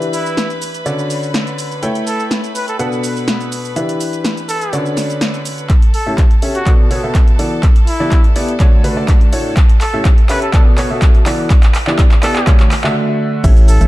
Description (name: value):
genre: piano house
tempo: 124 BPM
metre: 4/4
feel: straight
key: A mixolydian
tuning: A4 = 440 Hz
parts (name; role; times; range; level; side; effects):
- bright chamber violin section; sustained chords; 0.0-13.9 s; A4 to B5; -28 LUFS; left 1 dB; vintage 12-bit sampler grit, sidechain pumping
- clear upright piano; riff; 0.0-13.9 s; A2 to G5; -19 LUFS; equal; sidechain pumping, low-pass filter, ping-pong delay
- punchy analog drum machine; drums; 0.0-13.9 s; crash cymbal, handclaps, hi-hat, shaker, snare drum; -22 LUFS; equal; none
- warm trumpet; melody; 0.1-13.9 s; E4 to B4; -22 LUFS; equal; ping-pong delay
- electronic kick drum; drums; 5.7-13.5 s; none; -10 LUFS; equal; none
- organ-like FM bass; bass; 13.4-13.9 s; A1; -9 LUFS; equal; sidechain pumping
room: light reverb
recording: dark, warm production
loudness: -11 LUFS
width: side -17 dB against mid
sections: 0.0-5.7 A section; 5.7-13.4 B section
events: build-up 5.7-13.4; drum fill 5.7-13.0; break 13.0-13.4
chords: 0.0 Em7; 0.9 Dmaj7; 1.8 A7; 2.8 Bm7; 3.8 Em7; 4.7 Dmaj7; 5.7 A7; 6.7 Bm7; 7.6 Em7; 8.6 Dmaj7; 9.6 A7; 10.5 Bm7; 11.5 Em7; 12.5 Dmaj7